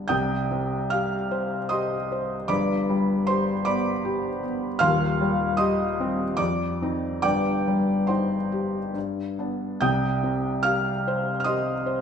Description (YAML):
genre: classical, romantic nocturne for solo piano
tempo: 68-78 BPM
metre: 3/4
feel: rubato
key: C minor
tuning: A4 = 439 Hz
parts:
  - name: felt-muted upright piano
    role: solo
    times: 0.0-12.0 s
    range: Eb1 to G6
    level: -22 LUFS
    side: equal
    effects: none
room: wet recital hall reverb, RT60 1.6 s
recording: minimal, uncompressed stereo recording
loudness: -22 LUFS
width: side -7 dB against mid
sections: 0.1-12.0 A section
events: none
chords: 0.1 Cm; 2.5 G; 4.8 Cm/Eb; 6.4 F5; 7.2 Cm/G; 9.0 G; 9.8 Cm